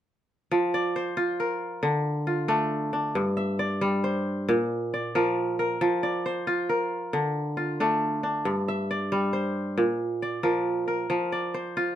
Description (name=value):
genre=west african traditional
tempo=91 BPM (dotted quarters)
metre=12/8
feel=straight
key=F major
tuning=A4 = 443 Hz
part: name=kora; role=arpeggios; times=0.5-12.0 s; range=G2 to E5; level=-24 LUFS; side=equal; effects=none
room=moderate studio reverb, RT60 0.5 s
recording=dark, warm production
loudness=-24 LUFS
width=side -11 dB against mid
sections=0.5-12.0 A section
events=none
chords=0.5 F5; 1.8 Dm; 3.2 G5; 4.5 Bb; 5.8 F5; 7.1 Dm; 8.5 G5; 9.8 Bb; 11.1 F5